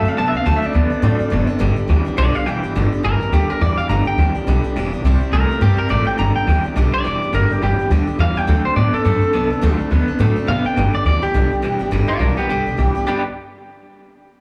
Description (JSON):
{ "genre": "rock", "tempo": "209 BPM", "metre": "4/4", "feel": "swing 59% on 8ths", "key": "G major", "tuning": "A4 = 440 Hz", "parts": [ { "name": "electric guitar through a small old amp", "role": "melody", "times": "0.0-13.2 s", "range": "B3 to Bb5", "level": "-24 LUFS", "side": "equal", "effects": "slapback echo, analog delay" }, { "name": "picked steel-string acoustic guitar", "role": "accompaniment", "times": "0.0-13.2 s", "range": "G2 to A4", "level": "-28 LUFS", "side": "equal", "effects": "slapback echo" }, { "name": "electric guitar through a small old amp", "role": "riff", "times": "0.0-13.2 s", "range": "G2 to B4", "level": "-25 LUFS", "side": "equal", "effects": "tremolo" }, { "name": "upright bass", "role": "bass", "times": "0.0-13.2 s", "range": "E1 to C3", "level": "-20 LUFS", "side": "equal", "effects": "none" } ], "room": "little or no reverb", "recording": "live gig heard through the venue's PA, club reverb", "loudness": "-18 LUFS", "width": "mono", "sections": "0.0-2.8 A section; 2.8-11.9 B section; 11.9-13.1 C section; 13.1-14.2 D section", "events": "clean electric guitar solo 0.0-2.8", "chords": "0.0 D7; 1.6 G; 5.0 C; 6.2 G; 8.5 D7; 10.8 G" }